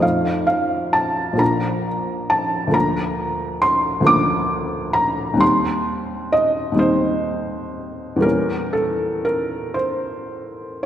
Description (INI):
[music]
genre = classical, romantic nocturne for solo piano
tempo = 35-46 BPM (dotted quarters)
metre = 6/8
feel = rubato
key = Bb major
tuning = A4 = 440 Hz
[part]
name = felt-muted upright piano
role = solo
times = 0.0-10.9 s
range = Bb1 to D6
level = -18 LUFS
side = equal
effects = none
[sound]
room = wet concert hall reverb, RT60 2.2 s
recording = none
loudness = -17 LUFS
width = side -10 dB against mid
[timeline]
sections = 0.0-10.9 A section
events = none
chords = 0.0 F7; 1.4 Bb; 2.7 Bb/D; 5.4 Cm/Eb; 8.2 Edim7